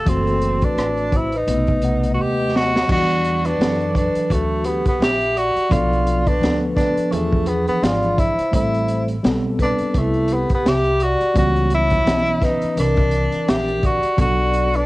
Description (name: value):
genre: hip hop, jazz-hop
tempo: 85 BPM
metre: 4/4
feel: swing 58% on 16ths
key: E minor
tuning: A4 = 440 Hz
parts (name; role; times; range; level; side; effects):
- mellow tenor saxophone; melody; 0.0-14.9 s; A3 to A4; -21 LUFS; equal; cassette tape, tape echo
- vibraphone with soft mallets; second line; 0.0-14.9 s; E4 to E5; -25 LUFS; left 1 dB; cassette tape
- upright bass; bass; 0.0-14.9 s; F#1 to F#2; -24 LUFS; equal; none
- mellow tine electric piano; accompaniment; 0.1-14.8 s; C3 to F#5; -24 LUFS; equal; medium stereo tremolo, cassette tape
- crunchy breakbeat drum kit; drums; 0.1-14.9 s; crash cymbal, hi-hat, kick drum, rim click, snare drum; -21 LUFS; equal; cassette tape
room: light reverb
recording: home recording on cassette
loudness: -16 LUFS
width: side -19 dB against mid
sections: 0.0-2.9 A section; 2.9-14.9 B section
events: drum fill 2.2-2.9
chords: 0.1 F#m7b5; 1.5 B7b9; 2.9 Em9; 5.7 Bm7b5; 7.1 E7b9; 8.5 Am9; 11.4 C#m7b5; 12.8 C9; 14.2 Bm7